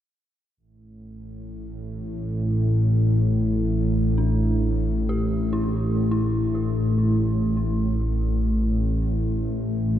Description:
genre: dark ambient drone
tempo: free time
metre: none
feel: none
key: unclear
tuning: A4 = 440 Hz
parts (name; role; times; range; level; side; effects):
- bowed-like drone; drone; 1.3-10.0 s; A1 to A2; -21 LUFS; equal; built-in reverb
- dark detuned synth bell; arpeggios; 4.2-10.0 s; D4 to G4; -33 LUFS; equal; chorus, analog delay
room: wet huge ambient reverb, RT60 7.7 s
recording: dreamy mix soaked in reverb, cassette tape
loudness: -20 LUFS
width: side -11 dB against mid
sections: 0.6-10.0 A section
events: fade-in on synth bell 0.6-10.0; filter sweep on synth drone 0.6-10.0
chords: 0.6 A5

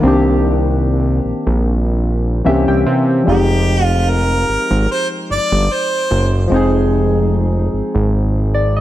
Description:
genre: contemporary R&B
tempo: 74 BPM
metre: 4/4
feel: swing 54% on 16ths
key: F dorian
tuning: A4 = 441 Hz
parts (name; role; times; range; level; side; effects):
- soft electric-piano-like synth keys; accompaniment; 0.0-8.8 s; Eb3 to G5; -17 LUFS; left 1 dB; chorus
- fat analog bass; bass; 0.0-8.8 s; F1 to C3; -15 LUFS; equal; none
- clear harmonica; melody; 3.3-6.3 s; G4 to D5; -19 LUFS; right 1 dB; digital delay
room: light reverb, small room ambience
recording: none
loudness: -13 LUFS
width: side -14 dB against mid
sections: 0.0-8.8 A section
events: synth keys fill 2.0-3.3, 8.1-8.8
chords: 0.0 Cm9; 2.5 C7b9; 3.3 Fm9

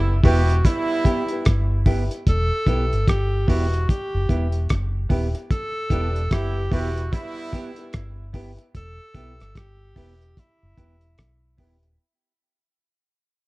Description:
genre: roots reggae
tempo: 74 BPM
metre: 4/4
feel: swing 61% on 16ths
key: E minor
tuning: A4 = 440 Hz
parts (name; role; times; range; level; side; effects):
- warm horn section; second line; 0.0-8.3 s; G3 to G4; -29 LUFS; right 4 dB; dub echo
- vintage muted fingered electric bass; bass; 0.0-12.0 s; D#1 to B1; -22 LUFS; equal; none
- dark upright piano; stabs; 0.1-11.9 s; E4 to B4; -32 LUFS; left 3 dB; none
- warm tenor saxophone; melody; 0.2-11.6 s; E4 to A4; -29 LUFS; equal; dub echo
- semi-hollow electric guitar; accompaniment; 0.2-11.9 s; B3 to G4; -30 LUFS; right 4 dB; dub echo
- cloth-damped thuddy drum kit; drums; 0.2-12.0 s; hi-hat, kick drum, rim click; -20 LUFS; equal; none
room: light reverb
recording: dark, warm production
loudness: -19 LUFS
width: side -21 dB against mid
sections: 0.0-12.0 A section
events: fade-out 0.0-12.0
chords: 0.0 Em

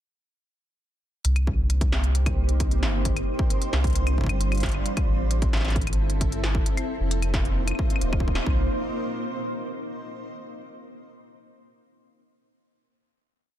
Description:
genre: IDM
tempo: 133 BPM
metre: 4/4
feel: straight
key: C dorian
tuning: A4 = 442 Hz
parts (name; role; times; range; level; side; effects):
- granular cloud pad; sustained chords; 1.7-8.7 s; G3 to C5; -30 LUFS; right 1 dB; built-in reverb
- warm sub bass; bass; 1.2-8.7 s; Eb1 to C2; -24 LUFS; equal; tube saturation
- industrial drum kit; drums; 1.2-8.6 s; claves, hi-hat, snare drum; -32 LUFS; left 1 dB; dub echo
- electronic kick drum; drums; 1.5-8.6 s; none; -26 LUFS; equal; none
room: little or no reverb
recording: dense, heavily limited modern master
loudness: -22 LUFS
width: side -12 dB against mid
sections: 1.2-8.5 groove; 8.5-10.3 final chord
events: band accent 8.4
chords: 1.2 Cm7; 3.1 G7sus4; 4.9 Am; 6.7 F7sus4; 8.5 Cm7

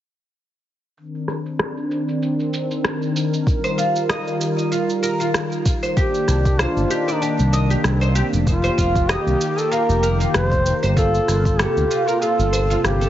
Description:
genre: organic downtempo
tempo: 96 BPM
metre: 4/4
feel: swing 55% on 16ths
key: unclear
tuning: A4 = 439 Hz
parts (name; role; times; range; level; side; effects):
- warm analog pad; sustained chords; 1.0-13.1 s; C3 to Bb4; -24 LUFS; left 1 dB; chorus, sidechain pumping
- electronic shaker and rim click; drums; 1.0-13.1 s; none; -26 LUFS; equal; low-pass filter on perc, low-pass filter on snare, low-pass filter on room
- electronic kick drum; drums; 3.5-11.6 s; none; -20 LUFS; equal; none
- oud; arpeggios; 3.6-13.1 s; F4 to Eb5; -24 LUFS; right 1 dB; digital delay
- mellow duduk; melody; 6.0-13.1 s; C4 to C5; -23 LUFS; equal; digital delay
- smooth synth bass; bass; 6.3-13.1 s; F1 to D2; -20 LUFS; equal; none
room: light reverb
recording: heavily compressed radio sound, multiband compression, nothing above 7.6 kHz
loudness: -17 LUFS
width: side -12 dB against mid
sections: 1.0-6.0 A section; 6.0-13.1 B section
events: filter sweep on drum 1.0-6.0; filter sweep on analog synth pad 1.0-6.0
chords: 1.0 Cm9; 3.5 F9sus4; 6.0 Cm9; 8.5 F9sus4; 11.0 Gm11

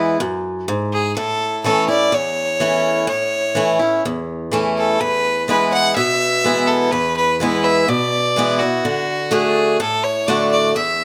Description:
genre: country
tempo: 125 BPM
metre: 4/4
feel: straight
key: E mixolydian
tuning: A4 = 440 Hz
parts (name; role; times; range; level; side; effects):
- clear fiddle; melody; 0.0-11.0 s; F#4 to F#5; -20 LUFS; equal; none
- picked swing-style acoustic guitar; accompaniment; 0.0-11.0 s; E2 to F#4; -21 LUFS; equal; none
room: light reverb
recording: close, detailed microphones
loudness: -18 LUFS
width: mono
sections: 0.0-11.0 A section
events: none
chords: 0.0 E; 1.2 A; 5.0 E; 8.8 D

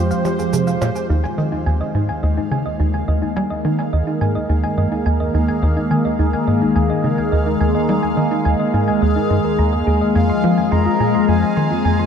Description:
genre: ambient, sequencer-driven space music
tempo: 106 BPM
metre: 4/4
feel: straight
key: unclear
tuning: A4 = 441 Hz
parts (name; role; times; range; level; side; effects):
- phased analog pad; sustained chords; 0.0-12.1 s; Eb3 to C5; -19 LUFS; left 1 dB; phaser, chorus
- thumb-piano-like synth pluck; arpeggios; 0.0-12.1 s; Eb4 to C6; -25 LUFS; right 2 dB; chorus, auto-pan, tape echo
- tight sequencer bass; riff; 0.0-12.1 s; Eb2 to G3; -19 LUFS; equal; wide subtle chorus, tape echo
- analog drone; bass; 0.0-1.1 s; F2; -34 LUFS; right 2 dB; none
- bubbling stepped-filter texture; texture; 0.0-12.1 s; C5 to F5; -34 LUFS; equal; chorus, built-in reverb
- shaker and percussion blips; percussion; 0.1-1.1 s; none; -32 LUFS; right 3 dB; tape echo
- breathy flute-like synth lead; melody; 10.2-12.1 s; F5 to Bb5; -23 LUFS; right 1 dB; analog chorus, tape echo
room: wet huge ambient reverb, RT60 7.5 s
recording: dark, warm production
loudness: -15 LUFS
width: side -7 dB against mid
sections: 0.0-1.1 A section; 1.1-12.1 B section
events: fade-in on synth texture 1.1-12.1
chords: 0.0 Fmadd9; 1.1 Ebsus4; 10.2 Fm

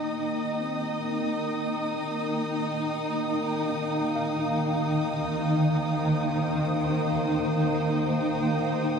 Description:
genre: ambient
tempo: free time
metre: none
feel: none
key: unclear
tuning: A4 = 436 Hz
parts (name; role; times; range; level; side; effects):
- granular cloud pad; sustained chords; 0.0-9.0 s; Eb3 to G5; -27 LUFS; equal; built-in reverb
- muted felt-like synth keys; arpeggios; 0.0-9.0 s; C4 to F5; -41 LUFS; left 1 dB; none
- overtone-sweeping drone; drone; 0.0-9.0 s; Eb3 to Bb3; -32 LUFS; equal; chorus, built-in reverb, phaser
- rich chamber violin section; texture; 0.0-9.0 s; Eb4 to Eb6; -31 LUFS; equal; none
room: wet huge ambient reverb, RT60 8.5 s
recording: cassette tape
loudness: -24 LUFS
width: side -6 dB against mid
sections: 0.0-9.0 A section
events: none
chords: 0.0 Eb; 3.0 Cm7/Eb

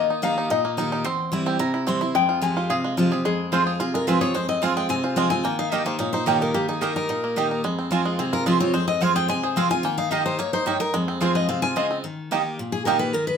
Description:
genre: bluegrass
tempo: 218 BPM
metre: 4/4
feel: straight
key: F minor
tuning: A4 = 440 Hz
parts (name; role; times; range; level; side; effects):
- bluegrass banjo; melody; 0.0-12.9 s; Ab3 to Ab4; -27 LUFS; right 3 dB; none
- lap resonator guitar; second line; 0.0-3.7 s; Ab4 to Ab5; -24 LUFS; left 7 dB; none
- picked steel-string acoustic guitar; accompaniment; 0.0-13.4 s; E2 to G4; -25 LUFS; left 1 dB; none
- mandolin; stabs; 0.0-13.0 s; Bb3 to C6; -26 LUFS; right 8 dB; none
- picked steel-string acoustic guitar; melody; 3.8-13.4 s; G4 to Ab5; -25 LUFS; left 4 dB; none
room: moderate studio reverb, RT60 0.7 s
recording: minimal, uncompressed stereo recording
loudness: -20 LUFS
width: side -7 dB against mid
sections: 0.0-3.3 A section; 3.3-12.0 B section; 12.0-13.4 C section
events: mandolin solo 0.0-3.3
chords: 0.0 Eb; 1.1 C/E; 2.2 Fmadd9; 3.3 Fm; 5.4 Eb; 7.6 Fm; 9.8 Eb; 10.9 Fm; 12.0 Eb

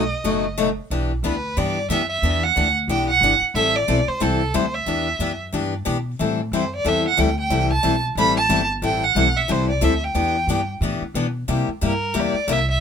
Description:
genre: acoustic string swing (jazz manouche)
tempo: 182 BPM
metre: 4/4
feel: swing 60% on 8ths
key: E minor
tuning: A4 = 438 Hz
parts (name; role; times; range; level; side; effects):
- warm violin; melody; 0.0-12.8 s; A4 to B5; -21 LUFS; right 3 dB; none
- picked steel-string acoustic guitar; accompaniment; 0.0-12.6 s; B2 to A4; -22 LUFS; left 4 dB; none
- upright bass; bass; 0.0-12.8 s; F#1 to C3; -24 LUFS; right 1 dB; none
room: light reverb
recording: minimal, uncompressed stereo recording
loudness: -18 LUFS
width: side -7 dB against mid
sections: 0.9-12.8 A section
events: none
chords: 0.0 B7; 0.9 Em9; 3.5 Am9; 4.9 Em9; 6.2 Am9; 10.2 Em7; 11.5 C7

